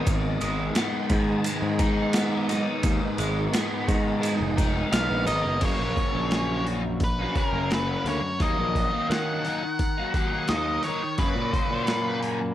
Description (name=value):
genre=psychedelic rock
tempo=86 BPM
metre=4/4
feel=straight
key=G# minor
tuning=A4 = 441 Hz
part: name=tonewheel organ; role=sustained chords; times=0.0-5.6 s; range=B3 to D#5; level=-35 LUFS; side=right 4 dB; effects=slow rotary speaker, chorus vibrato
part: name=crunchy overdriven guitar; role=riff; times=0.0-12.5 s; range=F#2 to D#4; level=-28 LUFS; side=left 1 dB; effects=flanger
part: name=fuzz picked electric bass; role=bass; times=0.1-12.5 s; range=E#1 to D#3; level=-28 LUFS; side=equal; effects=overdrive
part: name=boom bap sampler-style drum kit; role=drums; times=0.1-12.4 s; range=crash cymbal, hi-hat, kick drum, ride cymbal, snare drum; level=-28 LUFS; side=equal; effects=overdrive
part: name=maracas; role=percussion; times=0.1-5.4 s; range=none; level=-41 LUFS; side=right 8 dB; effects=none
part: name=octave-fuzz lead guitar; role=melody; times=4.9-12.2 s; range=A#4 to F#5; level=-29 LUFS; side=equal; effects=distortion, tape echo
room=light reverb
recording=none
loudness=-23 LUFS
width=side -12 dB against mid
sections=0.0-5.6 A section; 5.6-12.5 B section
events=none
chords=0.0 G#m; 5.6 F#; 8.4 D#m; 11.2 F#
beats=| 0.07 0.77 1.46 2.15 | 2.85 3.54 4.24 4.93 | 5.63 6.32 7.02 7.71 | 8.41 9.10 9.80 10.49 | 11.19 11.88